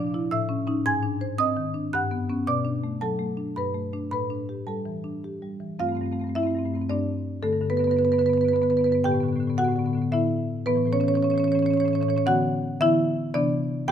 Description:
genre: classical, contemporary piece for solo marimba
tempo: 111 BPM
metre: 3/4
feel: rubato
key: unclear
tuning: A4 = 441 Hz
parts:
  - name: marimba with medium hard mallets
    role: solo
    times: 0.0-13.9 s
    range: G2 to G#6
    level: -22 LUFS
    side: equal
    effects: none
room: moderate recital hall reverb, RT60 1.6 s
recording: close, detailed microphones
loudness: -22 LUFS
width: side -9 dB against mid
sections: 0.0-5.8 A section; 5.8-13.9 B section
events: none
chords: 0.3 A; 0.8 G#; 1.9 Gmaj7#11; 2.5 Bm7; 3.5 Gadd9; 4.1 A9sus4; 5.8 G9sus4; 7.4 A9sus4/G; 9.1 A9sus4; 10.7 B9sus4/A; 12.3 D69; 13.3 Cmaj9

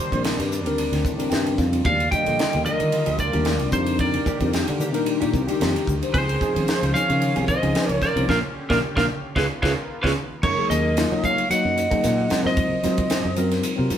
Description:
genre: electric jazz fusion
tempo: 112 BPM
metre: 4/4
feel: swing 54% on 16ths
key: Bb major, F# major from 10.4 s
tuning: A4 = 440 Hz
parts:
  - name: lightly driven lead guitar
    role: melody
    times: 0.0-13.5 s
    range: Bb4 to G5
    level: -24 LUFS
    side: right 1 dB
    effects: none
  - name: mellow hollow silver concert flute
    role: second line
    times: 0.0-13.5 s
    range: G4 to D#5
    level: -28 LUFS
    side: right 3 dB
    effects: none
  - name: lush unison pad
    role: sustained chords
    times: 0.0-10.4 s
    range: D3 to G4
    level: -34 LUFS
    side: equal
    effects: chorus
  - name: tine electric piano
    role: accompaniment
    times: 0.1-14.0 s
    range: D3 to G5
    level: -26 LUFS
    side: left 3 dB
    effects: phaser
  - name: sustaining fretless electric bass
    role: bass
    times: 0.1-14.0 s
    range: Ab1 to F#3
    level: -26 LUFS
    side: equal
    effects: none
  - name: crisp fusion drum kit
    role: drums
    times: 0.1-14.0 s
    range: crash cymbal, hi-hat, kick drum, ride cymbal, snare drum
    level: -27 LUFS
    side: right 1 dB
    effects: none
  - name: mellow electric guitar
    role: stabs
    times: 1.8-14.0 s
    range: Eb3 to A#4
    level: -31 LUFS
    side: equal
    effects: none
room: moderate stone room reverb, RT60 1.0 s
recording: band playing live in one room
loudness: -19 LUFS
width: side -9 dB against mid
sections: 0.0-10.4 A section; 10.4-14.0 B section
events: tine electric piano fill 0.8-1.9; band accent 8.3-10.4; drum fill 9.4-10.4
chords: 0.0 Bb69; 3.7 F13sus4; 6.1 Dbmaj9; 8.3 Bb6; 9.4 Db13; 10.4 F#69; 12.3 G#13

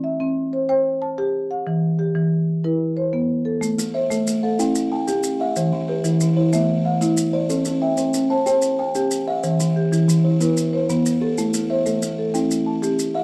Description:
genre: southern african traditional, mbira-style interlocking cycle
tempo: 124 BPM (dotted quarters)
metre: 12/8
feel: straight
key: A equiheptatonic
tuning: A4 = 440 Hz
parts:
  - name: marimba with soft mallets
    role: arpeggios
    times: 0.0-13.2 s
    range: E3 to A5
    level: -22 LUFS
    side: equal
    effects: none
  - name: maracas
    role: percussion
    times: 3.6-13.1 s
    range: none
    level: -33 LUFS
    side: equal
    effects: none
  - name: buzzing kalimba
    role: arpeggios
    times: 3.8-13.2 s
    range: E3 to A5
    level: -26 LUFS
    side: equal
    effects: none
room: light reverb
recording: dark, warm production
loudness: -21 LUFS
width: mono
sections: 0.0-3.6 A section; 3.6-13.2 A section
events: none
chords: 0.0 C; 1.7 Em; 3.6 Am; 4.6 C; 5.6 Em; 6.5 Am; 7.5 C; 9.4 Em; 11.4 Am; 12.3 C

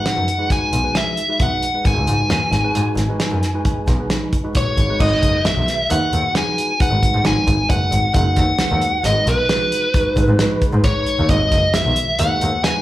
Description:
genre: progressive instrumental, band music in an uneven meter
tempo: 134 BPM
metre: 7/4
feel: straight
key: G# minor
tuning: A4 = 440 Hz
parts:
  - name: biting lead guitar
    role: melody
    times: 0.0-12.8 s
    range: B4 to G#5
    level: -19 LUFS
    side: equal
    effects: overdrive, plate reverb, slapback echo
  - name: overdriven tine electric piano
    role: accompaniment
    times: 0.0-12.8 s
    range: D#3 to B4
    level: -25 LUFS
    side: right 1 dB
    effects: phaser, plate reverb, slapback echo
  - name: warm soul drum kit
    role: drums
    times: 0.1-12.7 s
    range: crash cymbal, hi-hat, kick drum, snare drum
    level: -20 LUFS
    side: equal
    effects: none
  - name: bright double bass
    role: bass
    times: 0.2-12.5 s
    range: F#1 to G#2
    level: -20 LUFS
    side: equal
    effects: none
room: light reverb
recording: live gig heard through the venue's PA, club reverb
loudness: -15 LUFS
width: side -15 dB against mid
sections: 0.0-5.0 A section; 5.0-12.8 B section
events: none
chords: 0.0 G#m7

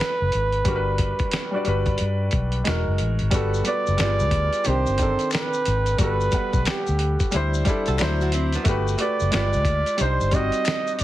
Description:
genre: R&B, neo-soul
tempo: 90 BPM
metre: 4/4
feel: swing 62% on 16ths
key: G major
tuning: A4 = 439 Hz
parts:
  - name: warm flugelhorn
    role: melody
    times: 0.0-11.0 s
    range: G4 to Eb5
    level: -25 LUFS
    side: right 2 dB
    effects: none
  - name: clear concert grand piano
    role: accompaniment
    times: 0.0-11.0 s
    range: Eb3 to F#5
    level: -26 LUFS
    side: equal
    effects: none
  - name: dusty soul sampler-style drum kit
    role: drums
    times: 0.0-11.0 s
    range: hi-hat, kick drum, snare drum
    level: -25 LUFS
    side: equal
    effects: none
  - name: vintage muted fingered electric bass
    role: bass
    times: 0.2-11.0 s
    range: E1 to G2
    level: -23 LUFS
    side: left 1 dB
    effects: none
  - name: maracas and finger snaps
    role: percussion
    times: 3.3-11.0 s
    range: none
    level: -36 LUFS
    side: left 8 dB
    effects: none
  - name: archtop guitar, miked and amplified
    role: second line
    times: 7.9-8.9 s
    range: B3 to A4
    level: -30 LUFS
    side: right 4 dB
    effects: none
room: light reverb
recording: heavily compressed radio sound, multiband compression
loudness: -20 LUFS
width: side -14 dB against mid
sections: 0.0-3.3 A section; 3.3-11.0 B section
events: none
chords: 0.0 Gmaj7; 2.7 Emaj9#11; 3.3 Gmaj9; 4.0 G7b9; 4.7 Cmadd9; 6.0 Gmaj9; 7.3 D9sus4; 8.0 D9; 8.7 Gmaj9; 9.3 G7b9; 10.0 Cmadd9

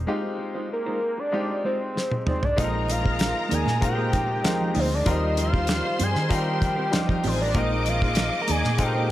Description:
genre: lush 1970s-style soul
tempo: 96 BPM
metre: 4/4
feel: straight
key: unclear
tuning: A4 = 438 Hz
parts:
  - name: bright grand piano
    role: accompaniment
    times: 0.0-9.1 s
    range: G3 to C5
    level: -30 LUFS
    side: left 3 dB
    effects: none
  - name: vintage muted fingered electric bass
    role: bass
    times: 0.0-9.1 s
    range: A1 to Eb3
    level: -27 LUFS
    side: equal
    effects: none
  - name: mellow electric guitar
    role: riff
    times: 0.1-9.1 s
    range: Ab3 to D5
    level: -33 LUFS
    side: right 3 dB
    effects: none
  - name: fat analog lead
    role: melody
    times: 0.7-9.1 s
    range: Bb4 to Bb5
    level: -27 LUFS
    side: equal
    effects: none
  - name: damped 70s drum kit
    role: drums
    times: 2.0-8.9 s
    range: hi-hat, kick drum, snare drum, toms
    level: -26 LUFS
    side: equal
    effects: none
  - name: bright studio string section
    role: second line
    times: 2.6-9.1 s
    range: Eb4 to D6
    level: -31 LUFS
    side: left 1 dB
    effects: none
  - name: overdriven tonewheel organ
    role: sustained chords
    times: 2.6-9.1 s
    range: Eb3 to F4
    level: -36 LUFS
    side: equal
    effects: none
  - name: congas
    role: percussion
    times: 2.6-8.8 s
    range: none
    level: -34 LUFS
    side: right 4 dB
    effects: none
room: light reverb, studio reverb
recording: none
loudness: -22 LUFS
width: side -14 dB against mid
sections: 0.0-2.6 A section; 2.6-9.1 B section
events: break 0.1-2.6; drum fill 2.0-2.6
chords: 0.1 Fm7; 2.6 Bb9sus4; 5.1 Eb69; 7.6 Bb9sus4

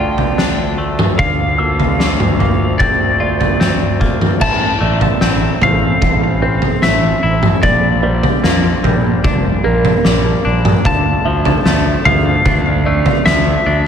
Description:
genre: post-rock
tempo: 74 BPM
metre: 4/4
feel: straight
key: D minor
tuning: A4 = 439 Hz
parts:
  - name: clean lap steel guitar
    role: melody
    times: 0.0-13.9 s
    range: D5 to A5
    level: -18 LUFS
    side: left 2 dB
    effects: tape echo
  - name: ethereal airy pad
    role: sustained chords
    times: 0.0-13.9 s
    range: D3 to D5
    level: -26 LUFS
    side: right 1 dB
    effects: none
  - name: felt-muted upright piano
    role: arpeggios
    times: 0.0-13.7 s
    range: Bb4 to E6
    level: -24 LUFS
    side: right 5 dB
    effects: tape echo
  - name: semi-hollow electric guitar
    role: arpeggios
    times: 0.0-13.9 s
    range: A2 to F4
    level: -22 LUFS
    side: left 2 dB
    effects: tape echo
  - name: fuzz fingered electric bass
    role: bass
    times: 0.0-13.9 s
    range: F1 to F2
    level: -18 LUFS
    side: equal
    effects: overdrive
  - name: oversized low-tuned drum kit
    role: drums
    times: 0.2-13.4 s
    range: crash cymbal, kick drum, snare drum, toms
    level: -15 LUFS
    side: equal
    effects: none
room: moderate concert hall reverb, RT60 2.1 s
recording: none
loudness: -11 LUFS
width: side -8 dB against mid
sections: 0.0-4.4 A section; 4.4-13.9 B section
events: none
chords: 0.0 Dm; 1.2 Bbadd9/D; 4.4 Am; 7.6 Gm/Bb; 10.9 Dm

